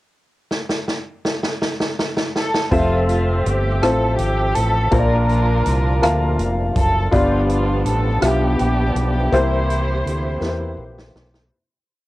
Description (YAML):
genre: slow gospel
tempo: 54 BPM (dotted quarters)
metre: 6/8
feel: straight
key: F major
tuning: A4 = 440 Hz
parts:
  - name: swinging big-band drum kit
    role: drums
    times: 0.5-11.5 s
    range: hi-hat, kick drum, rim click, snare drum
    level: -22 LUFS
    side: equal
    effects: cassette tape
  - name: muted chamber string section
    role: melody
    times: 2.4-10.8 s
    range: A3 to C5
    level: -22 LUFS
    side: right 1 dB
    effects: cassette tape, tape echo
  - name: warm upright piano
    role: accompaniment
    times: 2.7-11.5 s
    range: G2 to A5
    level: -21 LUFS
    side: left 2 dB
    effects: cassette tape
  - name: percussive tonewheel organ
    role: sustained chords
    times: 2.7-11.5 s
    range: E3 to E5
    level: -28 LUFS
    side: right 2 dB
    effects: slow rotary speaker, overdrive, chorus vibrato, cassette tape
  - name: fingered electric bass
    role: bass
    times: 2.7-11.5 s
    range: F1 to E2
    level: -20 LUFS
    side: equal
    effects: none
room: light reverb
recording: home recording on cassette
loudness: -16 LUFS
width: side -17 dB against mid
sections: 0.5-2.7 pickup bar; 2.7-11.5 verse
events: drum fill 0.5-2.7, 10.4-11.5; fade-out 9.3-11.5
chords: 0.5 N.C.; 2.7 Fmaj7; 4.9 Bbmaj7; 7.1 G7; 9.3 C7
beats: | 0.51 1.61 | 2.71 3.82 | 4.92 6.02 | 7.12 8.22 | 9.32 10.42